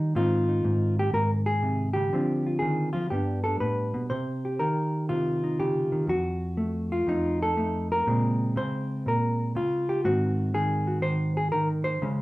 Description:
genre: solo jazz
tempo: 121 BPM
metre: 4/4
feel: swing 67% on 8ths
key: Ab major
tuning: A4 = 440 Hz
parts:
  - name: hollow-body jazz guitar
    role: solo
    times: 0.0-12.2 s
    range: F2 to C5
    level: -24 LUFS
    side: equal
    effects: none
room: wet small room reverb, RT60 0.5 s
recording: heard from further back in the room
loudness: -24 LUFS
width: side -18 dB against mid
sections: 0.0-4.1 A section; 4.1-12.2 B section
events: none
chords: 0.1 Ab; 2.1 Fm13/D; 3.1 G; 4.1 Cm7; 6.1 F7b9; 8.1 Bbm9; 10.0 Ab7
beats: | 0.15 0.64 1.14 1.63 | 2.12 2.62 3.11 3.61 | 4.10 4.60 5.09 5.59 | 6.08 6.58 7.07 7.57 | 8.06 8.56 9.05 9.54 | 10.04 10.54 11.03 11.52 | 12.02

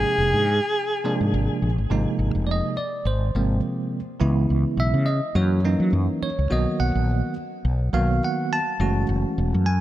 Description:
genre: electric jazz fusion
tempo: 104 BPM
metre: 4/4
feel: swing 56% on 16ths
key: unclear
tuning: A4 = 438 Hz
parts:
  - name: breathy alto saxophone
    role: melody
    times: 0.0-1.3 s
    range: Ab4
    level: -24 LUFS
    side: equal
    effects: ping-pong delay
  - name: bell-like tine electric piano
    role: accompaniment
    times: 0.0-9.8 s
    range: C3 to A5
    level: -24 LUFS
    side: right 2 dB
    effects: fast stereo tremolo
  - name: mellow fretless electric bass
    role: bass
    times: 0.0-9.8 s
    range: Fb1 to Gb3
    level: -22 LUFS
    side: equal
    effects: none
room: light reverb, small room reverb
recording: bright 1980s-style digital production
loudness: -20 LUFS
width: side -14 dB against mid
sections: 0.0-1.9 A section; 1.9-9.8 B section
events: none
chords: 0.0 Ab69; 4.2 Dbm7; 5.4 Gb7; 6.5 Bmaj7; 8.8 Gbm9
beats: 0.18 0.75 1.32 | 1.90 2.48 3.05 3.63 | 4.20 4.78 5.35 5.93 | 6.51 7.08 7.66 8.23 | 8.81 9.38

